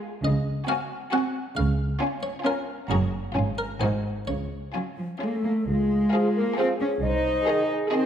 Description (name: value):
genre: cinematic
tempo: 134 BPM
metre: 3/4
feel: straight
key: Db major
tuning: A4 = 440 Hz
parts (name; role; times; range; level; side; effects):
- warm studio violin section; melody; 0.0-8.1 s; Eb5 to Bb5; -35 LUFS; left 5 dB; none
- clear studio violin section; second line; 0.0-8.1 s; F4 to Ab4; -35 LUFS; left 3 dB; none
- warm chamber viola section; accompaniment; 0.0-8.1 s; Ab3 to Ab4; -32 LUFS; right 2 dB; none
- buff-stop harpsichord; melody; 0.2-5.2 s; Ab4 to Gb5; -33 LUFS; left 1 dB; none
- dark studio double bass section; bass; 0.2-7.4 s; Gb1 to Db2; -28 LUFS; right 2 dB; none
- warm studio cello section; bass; 0.2-8.1 s; Gb2 to Eb4; -27 LUFS; equal; none
- mellow hollow large flute ensemble; second line; 5.2-8.1 s; Ab4 to Eb5; -30 LUFS; equal; none
- mellow French horn section; sustained chords; 5.7-8.1 s; Eb4 to C5; -30 LUFS; left 2 dB; none
- dark clarinet; second line; 6.1-8.1 s; Ab4; -33 LUFS; equal; none
- mellow bassoon; accompaniment; 6.1-8.1 s; Eb3 to F3; -30 LUFS; right 3 dB; none
room: moderate scoring stage reverb, RT60 1.8 s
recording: none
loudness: -23 LUFS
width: side -9 dB against mid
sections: 0.0-5.7 A section; 5.7-8.1 A section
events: none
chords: 0.2 Ab7/Db; 1.6 Db; 2.9 Gb; 3.4 Db/Ab; 3.8 Ab7; 4.3 Db; 7.0 Ab/C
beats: | 0.25 0.69 1.13 | 1.58 2.02 2.46 | 2.91 3.36 3.82 | 4.28 4.75 5.21 | 5.67 6.13 6.58 | 7.03 7.47 7.92